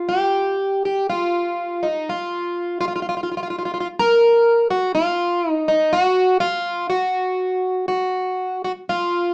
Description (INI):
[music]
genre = fado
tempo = 61 BPM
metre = 2/4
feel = uneven beats, rubato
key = unclear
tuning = A4 = 440 Hz
[part]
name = fingerpicked plugged-in twelve-string acoustic guitar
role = solo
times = 0.0-9.3 s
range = Eb4 to Bb4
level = -17 LUFS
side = equal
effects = none
[sound]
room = wet small room reverb, RT60 0.5 s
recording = heard from further back in the room, small speaker sound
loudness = -17 LUFS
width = side -32 dB against mid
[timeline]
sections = 0.0-1.1 A section; 1.1-9.3 B section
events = none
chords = none